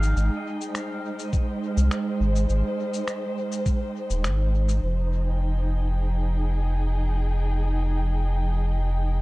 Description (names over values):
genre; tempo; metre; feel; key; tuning
ambient dub; 103 BPM; 4/4; straight; F minor; A4 = 440 Hz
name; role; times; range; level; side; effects
muted studio string section; sustained chords; 0.0-9.2 s; F3 to G5; -29 LUFS; right 1 dB; none
pedal steel guitar; arpeggios; 0.0-2.1 s; Eb4 to F5; -40 LUFS; left 2 dB; dub echo
warm sub bass; bass; 0.0-9.2 s; Eb1 to C2; -22 LUFS; equal; none
electronic cabasa and finger snaps; drums; 0.0-4.8 s; none; -36 LUFS; left 1 dB; dub echo
electronic kick drum; drums; 1.3-3.8 s; none; -23 LUFS; equal; none
room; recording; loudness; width
little or no reverb; dark, warm production; -23 LUFS; side -21 dB against mid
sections
0.0-4.8 A section; 4.8-9.2 B section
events
none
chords
0.2 Abmaj7; 4.8 Fm9